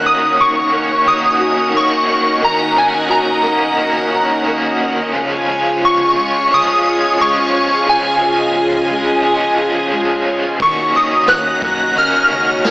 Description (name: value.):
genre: dream pop.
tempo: 88 BPM.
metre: 4/4.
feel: straight.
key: Eb minor.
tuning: A4 = 440 Hz.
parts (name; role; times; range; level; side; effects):
shimmering bell with halo; melody; 0.0-12.7 s; Ab5 to Gb6; -14 LUFS; equal; ensemble chorus, phaser, digital delay.
crunchy overdriven guitar; accompaniment; 0.0-12.7 s; Db3 to Gb4; -19 LUFS; equal; tremolo, wide subtle chorus.
string machine, violins; sustained chords; 0.0-12.7 s; Eb4 to Bb5; -19 LUFS; equal; ensemble chorus.
fingerpicked twelve-string acoustic guitar; arpeggios; 0.0-12.7 s; Db3 to Gb4; -21 LUFS; left 1 dB; lush chorus, digital delay.
vintage muted picked electric bass; bass; 10.6-12.7 s; Db2 to Gb2; -35 LUFS; equal; none.
jazz brush drum kit; drums; 10.6-12.7 s; kick drum, ride cymbal, snare drum, tambourine; -24 LUFS; equal; soft clipping on snare.
room: wet scoring stage reverb, RT60 1.7 s, small room ambience.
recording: blown-out, overdriven recording, overdrive, AM radio sound.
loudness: -12 LUFS.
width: side -22 dB against mid.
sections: 0.0-12.7 A section.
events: none.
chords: 0.0 Ebm7; 5.1 Db; 10.6 Ebm7.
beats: 0.37 1.05 1.74 | 2.42 3.10 3.78 4.46 | 5.14 5.83 6.51 7.19 | 7.87 8.55 9.23 9.92 | 10.60 11.28 11.96 12.64.